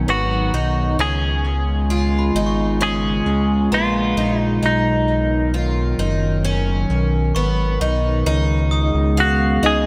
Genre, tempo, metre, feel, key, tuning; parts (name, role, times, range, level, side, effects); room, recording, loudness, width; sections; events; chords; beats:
dream pop; 66 BPM; 4/4; straight; Db mixolydian; A4 = 440 Hz
warbly tape-like pad; sustained chords; 0.0-9.9 s; Db3 to Bb4; -25 LUFS; equal; chorus, built-in reverb
picked twelve-string acoustic guitar; arpeggios; 0.0-9.9 s; Cb4 to F5; -27 LUFS; equal; subtle chorus, digital delay
fat analog bass; bass; 0.0-9.9 s; Gb1 to Db2; -22 LUFS; equal
semi-hollow electric guitar; melody; 0.1-9.9 s; Eb4 to Ab4; -24 LUFS; equal; digital delay
glockenspiel with brass mallets; texture; 1.9-9.7 s; Ab5 to Eb6; -34 LUFS; equal; digital delay
light reverb, studio reverb; -19 LUFS; mono
0.0-8.3 A section; 8.3-9.9 B section
0.0 Cb; 1.0 Db7; 4.6 Cbmaj7; 8.3 Db7sus4
0.08 | 0.99 1.90 2.81 3.72 | 4.63 5.54 6.45 7.36 | 8.26 9.17